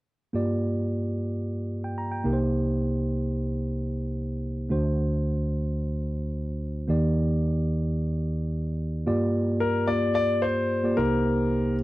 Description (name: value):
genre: pop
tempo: 110 BPM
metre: 4/4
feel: straight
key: G minor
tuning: A4 = 443 Hz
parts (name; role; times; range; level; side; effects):
- mellow tine electric piano; accompaniment; 0.3-11.8 s; C2 to Bb5; -25 LUFS; equal; none
- warm concert grand piano; melody; 9.6-11.8 s; Bb4 to D5; -25 LUFS; left 3 dB; none
room: light reverb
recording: dry, close 1970s-style studio recording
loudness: -24 LUFS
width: side -18 dB against mid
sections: 0.3-9.1 A section; 9.1-11.8 B section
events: none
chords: 0.3 Gm7; 2.3 Cm7; 4.7 D7; 6.9 Ebmaj7; 9.1 Gm7; 11.0 Cm7